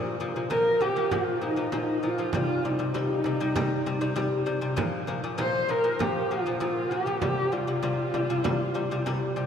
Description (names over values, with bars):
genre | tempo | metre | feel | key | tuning
mongolian traditional, Mongolian folk | 98 BPM | 4/4 | straight | Bb zhi mode | A4 = 439 Hz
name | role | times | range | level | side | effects
lute | arpeggios | 0.0-9.5 s | Bb2 to G3 | -29 LUFS | left 2 dB | none
frame drum | percussion | 0.2-9.5 s | none | -35 LUFS | right 4 dB | none
dark horsehead fiddle | melody | 0.5-9.4 s | Eb4 to C5 | -27 LUFS | equal | none
room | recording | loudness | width
wet cathedral reverb, RT60 5.9 s | in a vast, echoing space, lossy compression artefacts | -24 LUFS | side -8 dB against mid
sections
0.0-9.5 A section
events
none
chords
0.0 Bb5; 2.3 C5; 4.8 Bb5; 7.2 C5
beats
0.51 1.12 1.73 | 2.34 2.95 3.56 4.17 | 4.78 5.39 6.00 6.61 | 7.22 7.84 8.45 9.06